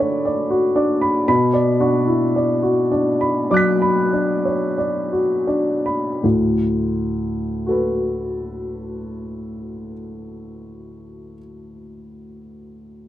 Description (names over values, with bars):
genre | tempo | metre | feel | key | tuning
neoclassical minimalist piano | 40-59 BPM | 4/4 | rubato | D major | A4 = 440 Hz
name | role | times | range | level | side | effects
warm upright piano | solo | 0.0-13.1 s | D2 to B6 | -18 LUFS | equal | none
room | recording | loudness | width
little or no reverb | close, detailed microphones | -17 LUFS | side -13 dB against mid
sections
0.0-6.2 A section; 6.2-11.7 B section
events
slowing down 0.0-6.2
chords
0.0 D6; 1.3 Bm; 6.2 D6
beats
0.26 | 1.28 2.35 3.50 4.78 | 6.23 7.67 9.06 10.39